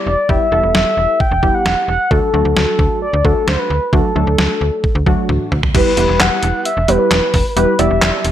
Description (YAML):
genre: synth-pop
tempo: 132 BPM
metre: 4/4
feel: straight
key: E minor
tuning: A4 = 437 Hz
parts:
  - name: mellow horn-like synth lead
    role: melody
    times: 0.0-8.2 s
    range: A4 to G5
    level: -16 LUFS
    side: left 1 dB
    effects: chorus, slapback echo
  - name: funky polysynth comp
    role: accompaniment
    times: 0.0-8.3 s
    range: F#3 to D5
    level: -20 LUFS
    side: right 1 dB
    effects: chorus
  - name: slap-like FM bass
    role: bass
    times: 0.1-8.3 s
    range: E1 to D2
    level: -18 LUFS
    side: equal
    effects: none
  - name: detuned 8-bit digital drum machine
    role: drums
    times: 0.3-8.3 s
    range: crash cymbal, handclaps, hi-hat, kick drum, snare drum, toms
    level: -17 LUFS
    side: equal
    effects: gated reverb
room: light reverb, digital ambience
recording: none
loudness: -12 LUFS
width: side -11 dB against mid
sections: 0.0-5.7 A section; 5.7-8.3 B section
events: drum fill 5.3-5.7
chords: 0.0 Em; 2.1 D; 5.7 Em